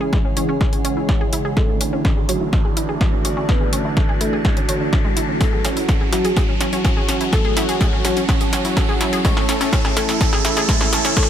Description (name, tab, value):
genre	melodic techno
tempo	125 BPM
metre	4/4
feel	straight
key	unclear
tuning	A4 = 439 Hz
part	deep dark ambient pad	sustained chords	0.0-11.3 s	C#3 to A5	-28 LUFS	right 1 dB	chorus, built-in reverb, sidechain pumping
part	analog pluck	arpeggios	0.0-11.2 s	G#3 to C#5	-26 LUFS	equal	chorus, sidechain pumping, dub echo
part	brassy analog pad	stabs	0.0-11.3 s	C#3 to A4	-25 LUFS	right 3 dB	chorus, sidechain pumping, dub echo
part	analog drone	drone	0.0-11.3 s	E3	-33 LUFS	right 1 dB	none
part	riser and noise sweep	sound effects	0.1-11.3 s	none	-27 LUFS	right 1 dB	none
part	granular cloud pad	texture	0.0-11.3 s	E4 to A5	-31 LUFS	left 1 dB	built-in reverb, sidechain pumping
part	electronic kick drum	drums	0.1-11.3 s	none	-19 LUFS	equal	none
part	house drum kit	drums	0.1-11.3 s	hi-hat, snare drum, toms	-25 LUFS	left 1 dB	high-pass filter on snare, high-pass filter on hats, high-pass filter on toms
part	soft octave-layered synth lead	melody	0.4-11.3 s	E4 to C#5	-27 LUFS	left 1 dB	chorus, phaser, cassette tape, sidechain pumping, ping-pong delay
room	light reverb, digital ambience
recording	none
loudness	-16 LUFS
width	side -10 dB against mid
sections	0.0-11.3 A section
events	build-up 0.0-11.3; drum fill 0.0-11.3; filter sweep on synth arpeggio sound 0.0-11.3; filter sweep on soft synth lead 0.0-11.3; filter sweep on analog synth pad 0.0-11.3; riser 0.1-11.3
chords	0.0 C#m; 1.6 D; 5.4 F#m; 9.2 A